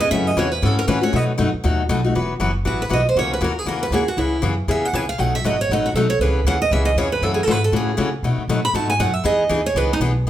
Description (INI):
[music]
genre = acoustic string swing (jazz manouche)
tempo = 236 BPM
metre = 4/4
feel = swing 57% on 8ths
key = E major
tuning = A4 = 438 Hz
[part]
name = picked steel-string acoustic guitar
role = melody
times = 0.0-10.0 s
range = D#4 to B5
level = -21 LUFS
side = right 3 dB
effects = none
[part]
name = picked steel-string acoustic guitar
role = accompaniment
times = 0.0-10.3 s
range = B2 to B4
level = -22 LUFS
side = left 3 dB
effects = none
[part]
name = upright bass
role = bass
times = 0.0-10.3 s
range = E1 to C#3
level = -22 LUFS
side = equal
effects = none
[sound]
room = moderate large studio reverb, RT60 0.9 s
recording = band playing live in one room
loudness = -17 LUFS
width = side -12 dB against mid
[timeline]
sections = 0.0-2.1 A section; 2.1-10.3 A section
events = steel-string acoustic guitar solo 0.0-2.1, 2.1-10.3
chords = 0.1 F#m7; 1.1 B7; 2.1 Esus2; 3.2 F#7; 4.2 C#m7; 5.2 B7; 6.2 C#m7; 7.2 F#m7; 8.2 B7; 9.2 Emaj7